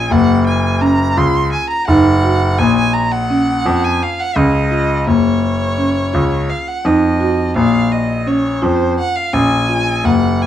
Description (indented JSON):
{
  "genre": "contemporary instrumental, chamber music in an uneven meter",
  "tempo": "169 BPM (eighths)",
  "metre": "7/8",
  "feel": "straight",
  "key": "Bb minor",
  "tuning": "A4 = 439 Hz",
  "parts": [
    { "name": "rich violin", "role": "melody", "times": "0.0-10.5 s", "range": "C5 to C6", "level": "-19 LUFS", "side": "right 1 dB", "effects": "none" },
    { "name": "clear grand piano", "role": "bass", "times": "0.0-10.5 s", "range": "Gb1 to F2", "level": "-16 LUFS", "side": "equal", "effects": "none" },
    { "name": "buzzing marimba with medium mallets", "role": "arpeggios", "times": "0.1-10.5 s", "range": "Bb3 to Gb4", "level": "-16 LUFS", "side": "left 2 dB", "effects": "none" }
  ],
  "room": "light reverb",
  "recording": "dark, warm production",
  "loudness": "-12 LUFS",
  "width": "side -10 dB against mid",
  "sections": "0.0-10.5 A section",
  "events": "none",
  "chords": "0.1 Gb; 2.6 Bbm; 5.1 Gb6; 7.6 Bbm7"
}